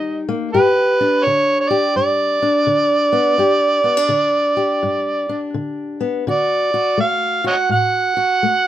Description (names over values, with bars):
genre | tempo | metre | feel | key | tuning
acoustic country blues, solo or duo | 83 BPM | 4/4 | swing 64% on 8ths | G major | A4 = 439 Hz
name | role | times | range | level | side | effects
overdriven harmonica | melody | 0.0-8.7 s | B4 to F#5 | -16 LUFS | right 2 dB | none
fingerpicked steel-string acoustic guitar | accompaniment | 0.0-8.7 s | G2 to G4 | -20 LUFS | left 3 dB | none
room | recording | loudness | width
light reverb | minimal, uncompressed stereo recording | -15 LUFS | side -12 dB against mid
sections
0.0-8.7 A section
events
none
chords
0.0 Cm7 (rootless); 0.5 G5; 6.3 D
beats
| 0.51 1.23 1.95 2.67 | 3.39 4.11 4.83 5.55 | 6.27 6.99 7.71 8.43